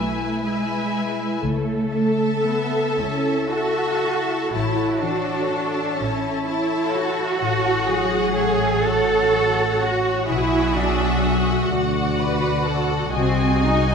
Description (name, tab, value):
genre	classical, slow romantic movement for symphony orchestra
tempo	36-43 BPM (dotted quarters)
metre	6/8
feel	rubato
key	A major, F# minor from 7.4 s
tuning	A4 = 440 Hz
part	rich symphonic violin section	melody	0.0-13.9 s	F#5 to A5	-30 LUFS	left 2 dB	none
part	warm symphonic violin section	second line	0.0-13.9 s	F#4 to E5	-27 LUFS	left 2 dB	none
part	rich symphonic viola section	accompaniment	0.0-13.9 s	E4 to A4	-26 LUFS	right 2 dB	none
part	concert harp	arpeggios	0.0-13.9 s	A2 to A4	-26 LUFS	left 6 dB	none
part	dark symphonic cello section	bass	0.0-13.9 s	G#3 to A4	-22 LUFS	right 3 dB	none
part	warm studio double bass section	bass	0.0-13.9 s	A1 to D2	-27 LUFS	right 2 dB	none
room	moderate scoring stage reverb, RT60 1.8 s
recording	none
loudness	-19 LUFS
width	side -6 dB against mid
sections	0.0-13.9 A section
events	none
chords	0.0 E/B; 1.4 A/C#; 4.5 A; 7.4 F#m/A; 10.3 Bm7; 13.2 G#7/B#